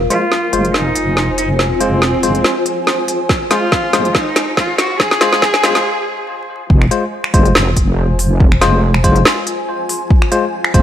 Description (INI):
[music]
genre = deep dubstep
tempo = 141 BPM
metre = 4/4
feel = swing 55% on 16ths, half-time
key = F phrygian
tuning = A4 = 442 Hz
[part]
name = granular cloud pad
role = sustained chords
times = 0.0-10.8 s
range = F4 to Ab5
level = -22 LUFS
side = left 1 dB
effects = built-in reverb
[part]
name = wobble bass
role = bass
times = 0.0-10.8 s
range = F1 to Gb1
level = -15 LUFS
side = equal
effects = chorus
[part]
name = rich cello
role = melody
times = 0.1-6.4 s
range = C4 to Ab4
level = -19 LUFS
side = equal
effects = low-pass filter, dub echo
[part]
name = bell-like tine electric piano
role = stabs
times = 0.1-10.8 s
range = Ab3 to C5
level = -19 LUFS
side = left 2 dB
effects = medium stereo tremolo, low-pass filter, dub echo
[part]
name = deep house drum kit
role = drums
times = 0.1-10.8 s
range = finger snaps, hi-hat, snare drum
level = -16 LUFS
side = equal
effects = studio reverb
[part]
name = electronic kick drum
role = drums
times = 3.3-10.8 s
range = none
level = -13 LUFS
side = equal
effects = studio reverb
[sound]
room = light reverb, digital ambience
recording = vinyl crackle, high-pass filter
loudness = -12 LUFS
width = side -10 dB against mid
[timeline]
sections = 0.0-6.7 A section; 6.7-10.8 B section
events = build-up 0.0-6.7; drum fill 0.0-5.8; filter sweep on tine electric piano 0.0-6.7; break 5.8-6.7; drop 6.7-10.8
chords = 0.0 Fm